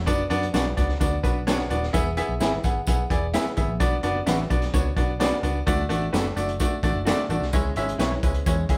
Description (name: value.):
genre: uptempo 1960s-style soul.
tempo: 129 BPM.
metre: 4/4.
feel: straight.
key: B dorian.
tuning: A4 = 439 Hz.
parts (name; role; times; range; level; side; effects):
vintage muted picked electric bass; bass; 0.0-8.8 s; D#1 to F#2; -30 LUFS; equal; none.
bright upright piano; accompaniment; 0.1-8.8 s; G#3 to F#5; -28 LUFS; equal; none.
crunchy breakbeat drum kit; drums; 0.1-8.8 s; hi-hat, kick drum, snare drum; -28 LUFS; equal; none.
congas; percussion; 0.1-8.6 s; none; -43 LUFS; equal; none.
tambourine; percussion; 0.1-8.8 s; none; -44 LUFS; equal; none.
electric guitar through a small old amp; stabs; 0.5-8.1 s; D4 to D5; -32 LUFS; equal; none.
room: wet studio reverb, RT60 0.6 s.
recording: band playing live in one room.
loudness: -24 LUFS.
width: mono.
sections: 0.0-8.8 A section.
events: none.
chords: 0.1 Bm/F#; 1.9 E; 3.8 Bm; 5.7 D; 7.5 C#m.